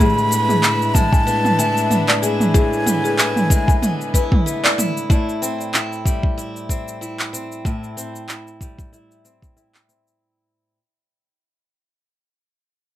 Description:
folktronica; 94 BPM; 4/4; swing 56% on 16ths; A minor; A4 = 438 Hz
breathy mellow silver concert flute; melody; 0.0-4.4 s; G#5 to B5; -22 LUFS; equal; ping-pong delay
buzzing marimba with medium hard mallets; second line; 0.0-4.8 s; G#4 to G#5; -26 LUFS; left 4 dB; ping-pong delay
muted string quartet; sustained chords; 0.0-5.1 s; A2 to B4; -25 LUFS; equal
picked old ladder-braced acoustic guitar; arpeggios; 0.0-10.8 s; A2 to E4; -24 LUFS; left 1 dB; low-pass filter
organic electronic drum kit; drums; 0.0-10.2 s; cabasa, handclaps, toms; -20 LUFS; right 1 dB; overdrive, small room ambience
electronic kick drum; drums; 0.9-9.5 s; -17 LUFS; equal; small room ambience
light reverb; -16 LUFS; side -13 dB against mid
0.0-5.1 A section; 5.1-10.2 B section
band accent 4.6-4.9; fade-out 5.1-10.2; filter sweep on steel-string acoustic guitar 5.1-10.2
0.0 E7/A; 5.1 Am7
0.63 1.27 1.91 | 2.55 3.18 3.82 4.46 | 5.10 5.74 6.38 7.01 | 7.65 8.29 8.93 9.57

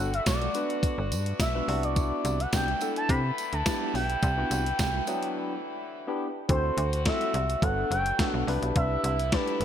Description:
early-eighties boogie funk; 106 BPM; 4/4; straight; A4 = 440 Hz
expressive portamento lead; melody; 0.0-9.6 s; B4 to B5; -30 LUFS; equal; chorus, ping-pong delay
barky tine electric piano; accompaniment; 0.0-9.6 s; F#3 to D5; -33 LUFS; left 2 dB; lush chorus
muted French horn section; sustained chords; 0.0-9.6 s; B2 to F#4; -39 LUFS; left 1 dB
slap-like FM bass; bass; 0.0-9.6 s; F#1 to C3; -29 LUFS; equal
clean 12-bit digital drum machine; drums; 0.1-9.6 s; hi-hat, kick drum, snare drum; -30 LUFS; equal; gated reverb
tambourine; percussion; 0.3-5.2 s; -42 LUFS; right 8 dB
moderate lush hall reverb, RT60 2.6 s; bright 1980s-style digital production; -25 LUFS; side -9 dB against mid
0.0-6.5 A section; 6.5-9.6 B section
break 5.4-6.5
0.0 Gmaj7; 1.7 Cmaj9#11; 6.5 D7; 7.6 Gmaj9; 8.5 Cmaj9
0.27 0.83 1.40 | 1.97 2.53 3.10 3.66 | 4.23 4.79 5.36 5.93 | 6.49 7.06 7.62 8.19 | 8.76 9.32

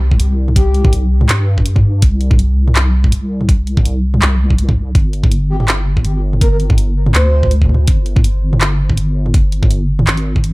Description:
half-time drum and bass; 164 BPM; 4/4; swing 56% on 16ths, half-time; A4 = 439 Hz
deep soft wobble bass; bass; 0.0-10.5 s; G1 to G2; -14 LUFS; equal; chorus
drum and bass drum kit; drums; 0.1-10.5 s; handclaps, hi-hat, toms; -18 LUFS; equal
electronic kick drum; drums; 0.1-10.4 s; -13 LUFS; equal
breathy flute-like synth lead; melody; 0.6-0.9, 5.5-7.5 s; G4 to C5; -24 LUFS; equal; lush chorus, tape echo
little or no reverb; dark, warm production; -11 LUFS; side -22 dB against mid
0.0-10.5 A section
0.0 C5; 5.0 G5
0.20 | 0.56 0.93 1.29 1.66 | 2.02 2.39 2.76 3.12 | 3.49 3.85 4.22 4.58 | 4.95 5.32 5.68 6.05 | 6.41 6.78 7.15 7.51 | 7.88 8.24 8.61 8.97 | 9.34 9.71 10.07 10.44

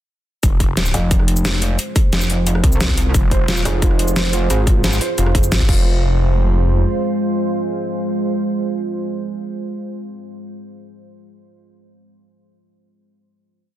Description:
dark technical drum and bass; 177 BPM; 4/4; straight; F minor; A4 = 440 Hz
deep dark ambient pad; sustained chords; 1.1-9.3 s; Ab3 to C5; -23 LUFS; right 2 dB; chorus, built-in reverb, sidechain pumping
phased detuned saw bass; bass; 0.4-0.9, 3.1-6.8 s; F1 to Ab1; -17 LUFS; equal; phaser, overdrive
dubstep drum kit; drums; 0.4-5.8 s; crash cymbal, hi-hat, rim click, shaker, snare drum; -22 LUFS; left 1 dB; overdrive
electronic kick drum; drums; 0.4-5.8 s; -16 LUFS; equal; overdrive
pulsing pluck wobble bass; bass; 0.9-5.0 s; F1 to C2; -18 LUFS; equal; chorus, tube saturation
felt-muted upright piano; arpeggios; 3.3-6.0 s; F4 to C5; -26 LUFS; right 3 dB; sidechain pumping, tape echo
light reverb; dense, heavily limited modern master; -15 LUFS; side -13 dB against mid
0.4-5.9 drop; 5.9-8.6 final hit
drop 0.4-5.9
0.4 Fm
| 0.43 0.77 1.11 1.45 | 1.79 2.13 2.47 2.81 | 3.15 3.48 3.82 4.16 | 4.50 4.84 5.18 5.52 | 5.86 6.20 6.54 6.87 | 7.21 7.55 7.89 8.23

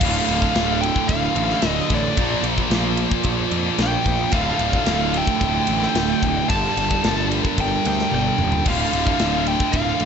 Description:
heavy metal; 111 BPM; 4/4; straight; D minor; A4 = 440 Hz
high-gain lead guitar; melody; 0.0-10.1 s; D5 to A5; -24 LUFS; equal; distortion
muted studio string section; sustained chords; 0.0-10.1 s; D3 to D5; -35 LUFS; left 2 dB
distorted electric guitar; riff; 0.0-10.1 s; D2 to Bb3; -24 LUFS; right 14 dB; overdrive
heavy high-gain guitar; riff; 0.0-10.1 s; D2 to Bb3; -24 LUFS; left 17 dB; distortion
fuzz picked electric bass; bass; 0.0-10.1 s; D1 to F2; -25 LUFS; left 1 dB; overdrive
tight metal drum kit; drums; 0.0-10.1 s; crash cymbal, kick drum, ride cymbal, snare drum, toms; -24 LUFS; left 1 dB
small room ambience; nothing above 7.9 kHz; -17 LUFS; side -7 dB against mid
0.0-10.1 A section
drum fill 8.1-8.7
0.0 Dm; 2.2 Bb; 4.3 Dm; 6.5 Gm; 8.7 Dm
| 0.01 0.55 1.09 1.63 | 2.17 2.71 3.25 3.79 | 4.33 4.87 5.41 5.96 | 6.50 7.04 7.58 8.12 | 8.66 9.20 9.74

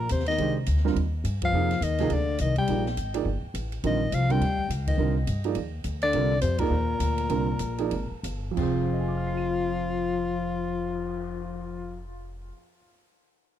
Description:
modal jazz; 178-209 BPM; 4/4; swing 60% on 8ths; F dorian; A4 = 440 Hz
breathy soprano saxophone; melody; 0.0-12.0 s; F4 to G5; -30 LUFS; equal; tape echo
breathy trombone; second line; 0.0-12.0 s; Bb2 to G3; -31 LUFS; left 9 dB
upright bass; bass; 0.0-12.5 s; F1 to G2; -28 LUFS; left 1 dB
open jazz drum kit; drums; 0.1-11.2 s; crash cymbal, cymbal swell, hi-hat, kick drum, ride cymbal, snare drum; -38 LUFS; equal
warm baby grand piano; accompaniment; 0.4-13.0 s; F2 to Eb7; -30 LUFS; right 11 dB
little or no reverb; dry, close 1970s-style studio recording; -24 LUFS; side -10 dB against mid
0.0-8.6 A section; 8.6-11.3 B section
band accent 1.4, 4.8, 6.6; slowing down 6.1-8.6
0.0 F9sus4; 8.6 Fm
0.10 | 0.39 0.67 0.96 1.25 | 1.54 1.82 2.11 2.40 | 2.69 2.97 3.26 3.55 | 3.84 4.12 4.41 4.70 | 4.99 5.27 5.56 5.85 | 6.13 6.42 6.71 7.01 | 7.30 7.61 7.92 8.25 | 8.58 8.92 9.25 9.59 | 9.93 10.27 10.61 10.94

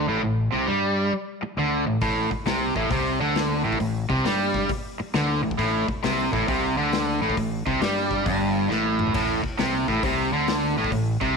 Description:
blues rock power trio and southern rock; 135 BPM; 4/4; swing 66% on 8ths; A minor; A4 = 440 Hz
cranked stack guitar; riff; 0.0-11.4 s; G2 to G3; -22 LUFS; equal; overdrive
growling fingered electric bass; bass; 0.0-11.4 s; G1 to G2; -31 LUFS; equal; overdrive
big rock drum kit; drums; 2.0-11.3 s; crash cymbal, hi-hat, kick drum, snare drum, toms; -30 LUFS; left 3 dB
moderate plate reverb, RT60 1.7 s, small room ambience; 1960s-style stereo; -21 LUFS; side -5 dB against mid
0.0-11.4 A section
drum fill 8.7-9.1
0.0 Am
| 0.24 0.69 1.13 1.58 | 2.02 2.47 2.91 3.36 | 3.80 4.25 4.70 5.14 | 5.59 6.03 6.48 6.92 | 7.37 7.81 8.26 8.70 | 9.14 9.59 10.03 10.48 | 10.92

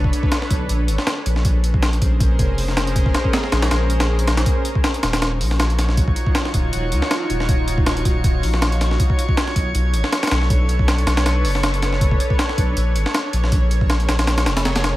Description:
drum and bass, jungle; 159 BPM; 4/4; swing 54% on 16ths; A4 = 440 Hz
granular cloud pad; sustained chords; 0.0-15.0 s; Db4 to Db5; -26 LUFS; equal; built-in reverb
saturated sub bass; bass; 0.0-15.0 s; Eb1 to Db2; -20 LUFS; equal
breakbeat sampler-style drum kit; drums; 0.0-14.9 s; hi-hat, kick drum, snare drum; -19 LUFS; equal; small room ambience
drifting glass-harmonics texture; texture; 5.4-15.0 s; Db5 to Db6; -30 LUFS; equal; chorus, built-in reverb
digital ambience; vinyl crackle; -16 LUFS; side -16 dB against mid
0.0-15.0 A section
0.0 Bm9; 0.7 Bbm9; 4.5 Ebm9; 9.0 Bm9; 12.8 Bbm7
0.32 0.69 1.07 | 1.45 1.82 2.20 2.58 | 2.96 3.33 3.71 4.09 | 4.46 4.84 5.22 5.60 | 5.97 6.35 6.73 7.11 | 7.48 7.86 8.24 8.62 | 8.99 9.37 9.75 10.13 | 10.50 10.88 11.26 11.63 | 12.01 12.39 12.77 13.14 | 13.52 13.90 14.28 14.65

